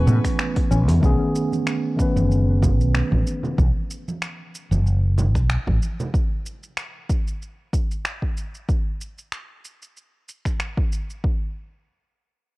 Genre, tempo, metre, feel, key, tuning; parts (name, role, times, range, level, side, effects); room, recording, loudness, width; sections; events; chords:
sunset chillout; 94 BPM; 4/4; swing 55% on 16ths; A4 = 443 Hz
mellow tine electric piano; accompaniment; 0.0-3.6 s; D#3 to B4; -24 LUFS; equal; auto-pan, low-pass filter, digital delay
rich chamber string section; sustained chords; 0.0-1.0 s; B4 to C#6; -38 LUFS; left 3 dB
mellow fretless electric bass; bass; 0.0-5.8 s; F#1 to A2; -18 LUFS; equal
soft round pluck; arpeggios; 0.1-1.0 s; B3 to C#4; -33 LUFS; left 4 dB
deep house drum kit; drums; 0.1-11.2 s; finger snaps, hi-hat, shaker; -32 LUFS; equal; overdrive, studio reverb
congas; percussion; 0.1-6.1 s; -29 LUFS; right 2 dB
electronic kick drum; drums; 0.2-11.4 s; -23 LUFS; equal; overdrive, studio reverb
little or no reverb; worn, warbling old tape, cassette tape, warbly pitch drift; -20 LUFS; side -21 dB against mid
0.0-1.0 A section; 1.0-11.2 B section; 11.2-12.6 C section
filter sweep on tine electric piano 1.0-3.6
0.0 Amaj9; 1.0 B13; 6.1 N.C.